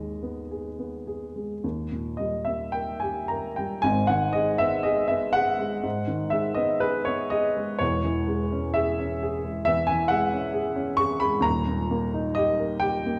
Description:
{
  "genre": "classical, romantic nocturne for solo piano",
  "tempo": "52-70 BPM",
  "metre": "4/4",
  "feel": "rubato",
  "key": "G# minor",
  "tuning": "A4 = 440 Hz",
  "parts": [
    { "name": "warm baby grand piano", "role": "solo", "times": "0.0-13.2 s", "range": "D#1 to C#6", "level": "-26 LUFS", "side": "equal", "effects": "none" }
  ],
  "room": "wet recital hall reverb, RT60 1.8 s",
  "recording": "dark, warm production",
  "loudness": "-26 LUFS",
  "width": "mono",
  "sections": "0.0-3.8 A section; 3.8-13.2 A section",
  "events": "none",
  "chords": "0.0 G#m/D#; 1.6 D#; 3.8 G#m; 7.8 C#m/E; 11.4 D#",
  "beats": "0.50 1.63 2.74 | 3.85 4.87 5.85 6.83 | 7.81 8.76 9.67 10.54 | 11.44 12.35"
}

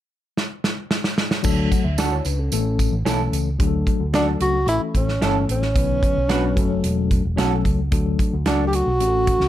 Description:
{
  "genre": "uptempo 1960s-style soul",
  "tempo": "111 BPM",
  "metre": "4/4",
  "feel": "straight",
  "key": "D major",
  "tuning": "A4 = 440 Hz",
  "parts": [
    { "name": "natural country drum kit", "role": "drums", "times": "0.4-9.5 s", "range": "crash cymbal, hi-hat, kick drum, snare drum", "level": "-22 LUFS", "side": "equal", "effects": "none" },
    { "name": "mellow tine electric piano", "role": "accompaniment", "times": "1.4-9.5 s", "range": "D3 to F#5", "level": "-24 LUFS", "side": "left 6 dB", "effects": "medium stereo tremolo, plate reverb" },
    { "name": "picked electric bass", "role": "bass", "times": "1.4-9.5 s", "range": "E1 to D2", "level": "-23 LUFS", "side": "equal", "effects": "none" },
    { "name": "tambourine", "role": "percussion", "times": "1.4-3.5 s", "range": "none", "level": "-35 LUFS", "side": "right 5 dB", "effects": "none" },
    { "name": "electric guitar through a small old amp", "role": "stabs", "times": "2.0-8.6 s", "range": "C#4 to B4", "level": "-26 LUFS", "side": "right 6 dB", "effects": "plate reverb" },
    { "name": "breathy tenor saxophone", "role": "melody", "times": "4.1-9.5 s", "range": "C#4 to G4", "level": "-21 LUFS", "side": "right 1 dB", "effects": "plate reverb" }
  ],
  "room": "light reverb",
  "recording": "none",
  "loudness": "-18 LUFS",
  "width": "side -12 dB against mid",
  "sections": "0.0-1.4 A section; 1.4-3.6 B section; 3.6-9.5 C section",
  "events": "drum fill 0.4-1.4",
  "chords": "0.0 N.C.; 1.4 D; 2.5 A; 3.6 D; 4.7 A; 5.8 Bm; 6.6 F#m; 7.9 D",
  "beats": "0.37 0.91 | 1.45 1.99 2.52 3.06 | 3.60 4.14 4.68 5.22 | 5.76 6.30 6.84 7.38 | 7.92 8.46 9.00"
}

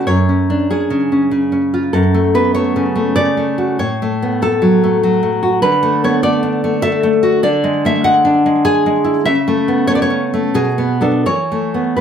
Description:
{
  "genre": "romantic piece for solo classical guitar",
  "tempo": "80-101 BPM",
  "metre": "3/4",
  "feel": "rubato",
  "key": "F# minor",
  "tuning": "A4 = 440 Hz",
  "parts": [
    { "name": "nylon-string guitar", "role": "solo", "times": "0.0-12.0 s", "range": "F#2 to G#5", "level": "-12 LUFS", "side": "equal", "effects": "slapback echo" }
  ],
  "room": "light reverb",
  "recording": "none",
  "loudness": "-12 LUFS",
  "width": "side -8 dB against mid",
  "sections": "0.0-12.0 A section",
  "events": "none",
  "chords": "0.1 C#5/F#; 1.9 F#m; 3.8 F#m/A; 5.6 D5; 7.4 E7/D; 9.3 A/C#; 10.5 Bm; 11.3 Esus4",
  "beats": "| 0.07 0.69 1.30 | 1.92 2.54 3.16 | 3.79 4.43 5.04 | 5.64 6.25 6.84 | 7.45 8.06 8.67 | 9.28 9.89 10.55 | 11.26 11.99"
}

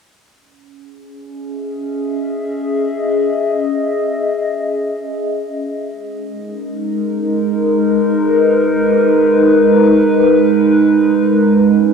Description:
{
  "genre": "ambient",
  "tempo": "free time",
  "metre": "none",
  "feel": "none",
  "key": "C# dorian",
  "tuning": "A4 = 440 Hz",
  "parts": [
    { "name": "warbly tape-like pad", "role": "sustained chords", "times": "1.3-11.9 s", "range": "G#3 to E5", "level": "-12 LUFS", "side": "equal", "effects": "chorus, built-in reverb, phaser" }
  ],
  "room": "wet spring reverb, RT60 1.7 s",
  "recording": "dark, warm production",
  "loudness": "-12 LUFS",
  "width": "side -6 dB against mid",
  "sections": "0.2-11.9 A section",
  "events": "fade-in on ambient pad 0.2-11.9",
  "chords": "0.2 C#m; 5.9 G#m",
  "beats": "free time"
}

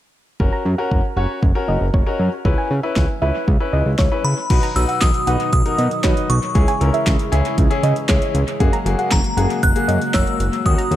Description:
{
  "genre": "synth-pop",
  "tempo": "117 BPM",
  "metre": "4/4",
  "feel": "straight",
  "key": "F# mixolydian",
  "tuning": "A4 = 440 Hz",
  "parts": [
    { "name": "clear grand piano", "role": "accompaniment", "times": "0.4-11.0 s", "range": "A#3 to C#5", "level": "-24 LUFS", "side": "left 4 dB", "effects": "dub echo" },
    { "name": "fat analog bass", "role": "bass", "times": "0.4-11.0 s", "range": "F#1 to C#3", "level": "-19 LUFS", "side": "equal", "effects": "none" },
    { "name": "deep house drum kit", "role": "drums", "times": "0.4-11.0 s", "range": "crash cymbal, handclaps, hi-hat, kick drum, snare drum", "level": "-19 LUFS", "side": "equal", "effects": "none" },
    { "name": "soft round pluck", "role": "second line", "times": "0.5-10.9 s", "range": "C#5 to A#5", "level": "-26 LUFS", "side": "right 2 dB", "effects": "chorus, dub echo" },
    { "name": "glassy synth bell", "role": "melody", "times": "4.2-11.0 s", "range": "A#5 to F#6", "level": "-23 LUFS", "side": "left 1 dB", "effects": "chorus, dub echo" },
    { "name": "chorused pulse-width pad", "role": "sustained chords", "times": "4.5-11.0 s", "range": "B2 to G#4", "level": "-26 LUFS", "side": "equal", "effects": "none" }
  ],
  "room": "light reverb, digital ambience",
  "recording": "echo-heavy mix",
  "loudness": "-15 LUFS",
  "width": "side -13 dB against mid",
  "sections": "0.4-4.5 A section; 4.5-11.0 B section",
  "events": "none",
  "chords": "0.4 F#; 2.5 C#m7; 4.5 B; 6.6 C#m; 8.6 F#add9",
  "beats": "| 0.40 0.91 1.42 1.94 | 2.45 2.96 3.48 3.99 | 4.50 5.01 5.53 6.04 | 6.55 7.07 7.58 8.09 | 8.60 9.12 9.63 10.14 | 10.65"
}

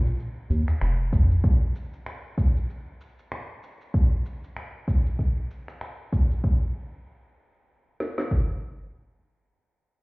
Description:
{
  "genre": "organic downtempo",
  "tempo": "96 BPM",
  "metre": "4/4",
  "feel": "swing 57% on 16ths",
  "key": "unclear",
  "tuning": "A4 = 441 Hz",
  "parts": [
    { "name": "electronic shaker and finger snaps", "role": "drums", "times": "0.1-6.4 s", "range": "none", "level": "-43 LUFS", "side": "equal", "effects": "none" },
    { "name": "round analog bass", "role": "bass", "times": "0.5-1.4 s", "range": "F1 to F2", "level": "-21 LUFS", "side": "equal", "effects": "sidechain pumping" },
    { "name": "afro-pop drum kit", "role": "drums", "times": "1.1-8.5 s", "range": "kick drum, snare drum", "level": "-22 LUFS", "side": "equal", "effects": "none" }
  ],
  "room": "little or no reverb",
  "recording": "heard muffled through a wall, stone room reverb, EQ, nothing above 7.8 kHz",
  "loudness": "-23 LUFS",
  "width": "side -30 dB against mid",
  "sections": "0.0-6.4 A section; 6.4-8.9 B section",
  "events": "none",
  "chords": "none",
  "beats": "0.19 0.81 | 1.44 2.06 2.69 3.31 | 3.94 4.56 5.19 5.81 | 6.44 7.06 7.69 8.31"
}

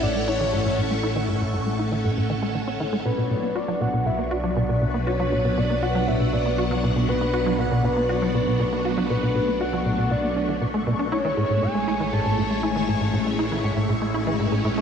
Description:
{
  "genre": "ambient",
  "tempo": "119 BPM",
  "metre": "4/4",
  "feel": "straight",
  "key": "B dorian",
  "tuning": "A4 = 439 Hz",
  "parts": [
    { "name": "soft octave-layered synth lead", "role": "melody", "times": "0.0-13.0 s", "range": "B4 to A5", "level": "-28 LUFS", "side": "left 1 dB", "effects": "chorus, ping-pong delay" },
    { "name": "phased string machine", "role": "sustained chords", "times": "0.0-14.8 s", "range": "F#3 to F#5", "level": "-26 LUFS", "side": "equal", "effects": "ensemble chorus, phaser" },
    { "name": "tight sequencer bass", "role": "riff", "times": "0.0-14.8 s", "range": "A2 to F#4", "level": "-25 LUFS", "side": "equal", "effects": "wide subtle chorus, ping-pong delay" },
    { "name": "analog drone", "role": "bass", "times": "0.0-14.8 s", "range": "A1 to B1", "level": "-29 LUFS", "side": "equal", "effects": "chorus" },
    { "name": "pulsing gated texture", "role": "texture", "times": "0.0-14.8 s", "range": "F#5 to C#6", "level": "-36 LUFS", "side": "left 2 dB", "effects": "chorus, built-in reverb" }
  ],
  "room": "wet lush hall reverb, RT60 2.9 s",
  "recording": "worn, warbling old tape, cassette tape, warbly pitch drift",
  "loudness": "-21 LUFS",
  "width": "side -7 dB against mid",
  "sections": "0.0-14.8 A section",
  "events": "filter sweep on analog synth bass 0.0-14.8",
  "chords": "0.0 A; 3.1 Bm; 11.1 Amaj7",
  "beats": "0.03 0.53 | 1.03 1.54 2.04 2.55 | 3.05 3.56 4.06 4.57 | 5.07 5.57 6.08 6.58 | 7.09 7.59 8.09 8.60 | 9.10 9.61 10.11 10.62 | 11.12 11.62 12.13 12.63 | 13.14 13.64 14.14 14.65"
}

